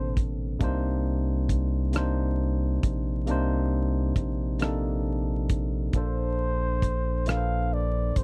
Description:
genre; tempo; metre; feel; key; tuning
slow six-eight R&B; 45 BPM (dotted quarters); 6/8; straight; C dorian; A4 = 440 Hz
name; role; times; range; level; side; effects
breathy flugelhorn; melody; 0.0-0.3, 6.0-8.2 s; C5 to F5; -34 LUFS; equal; slapback echo
barky tine electric piano; accompaniment; 0.0-8.2 s; Bb2 to C5; -32 LUFS; equal; overdrive
rubbery square bass; bass; 0.0-8.2 s; A1 to C2; -30 LUFS; equal; none
cloth-damped thuddy drum kit; drums; 0.2-8.2 s; hi-hat, kick drum, rim click; -29 LUFS; equal; none
room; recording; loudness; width
little or no reverb; dry, close 1970s-style studio recording, vinyl crackle; -27 LUFS; mono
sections
0.0-8.2 A section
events
none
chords
0.0 Bbmaj9; 0.6 Cm9; 5.9 Bbmaj9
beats
| 0.60 1.94 | 3.27 4.60 | 5.94 7.27

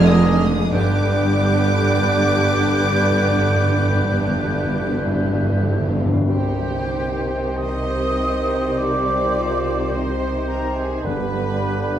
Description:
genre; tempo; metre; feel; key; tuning
classical; 42-54 BPM; 4/4; rubato; C minor; A4 = 441 Hz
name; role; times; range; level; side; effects
warm symphonic violin section; melody; 0.0-12.0 s; B4 to F6; -31 LUFS; left 1 dB; none
concert flute; second line; 0.0-12.0 s; G5 to Ab6; -27 LUFS; equal; none
warm oboe; second line; 0.0-12.0 s; B4 to D5; -32 LUFS; right 2 dB; none
warm symphonic violin section; second line; 0.0-12.0 s; D4 to Eb5; -28 LUFS; left 1 dB; none
mellow bassoon; accompaniment; 0.0-12.0 s; D3 to G3; -28 LUFS; equal; none
rich symphonic viola section; accompaniment; 0.0-12.0 s; D3 to G4; -29 LUFS; right 1 dB; none
clear trombone section; sustained chords; 0.0-12.0 s; D3 to C4; -28 LUFS; right 1 dB; none
dark French horn section; sustained chords; 0.0-12.0 s; D4 to G4; -28 LUFS; left 2 dB; none
concert harp; arpeggios; 0.0-12.0 s; F2 to D6; -32 LUFS; left 4 dB; none
warm trumpet; stabs; 0.0-12.0 s; G4 to Eb5; -32 LUFS; right 2 dB; none
clear symphonic double bass section; bass; 0.0-12.0 s; F1 to C2; -23 LUFS; right 2 dB; none
rich symphonic cello section; bass; 0.0-12.0 s; F2 to C3; -25 LUFS; right 2 dB; none
timpani; percussion; 0.7-12.0 s; G2; -24 LUFS; equal; none
room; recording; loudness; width
wet stone room reverb, RT60 1.2 s; heard from further back in the room; -17 LUFS; side -10 dB against mid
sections
0.0-6.3 A section; 6.3-12.0 B section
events
timpani fill 0.7-6.3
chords
0.0 Ddim/F; 0.7 G; 6.3 Cm; 11.0 G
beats
| 0.72 2.12 3.54 4.91 | 6.27 7.60 8.78 9.93 | 11.05

